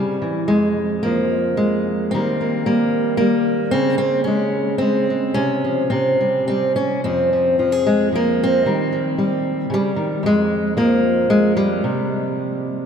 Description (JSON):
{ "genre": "folk, solo fingerstyle acoustic guitar", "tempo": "111 BPM", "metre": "3/4", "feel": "rubato", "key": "unclear", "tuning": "A4 = 441 Hz", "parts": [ { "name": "fingerpicked steel-string acoustic guitar", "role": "solo", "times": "0.0-12.9 s", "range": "F2 to Ab4", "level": "-16 LUFS", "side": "equal", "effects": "none" } ], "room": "wet cathedral reverb, RT60 5.1 s", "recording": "in a vast, echoing space", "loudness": "-16 LUFS", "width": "side -7 dB against mid", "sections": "0.5-12.9 A section", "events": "none", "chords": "0.5 N.C.; 2.1 Eb; 3.7 Db5; 5.4 Csus4; 5.9 C5; 7.0 Fm; 8.7 Eb6; 10.2 N.C.; 11.8 C5" }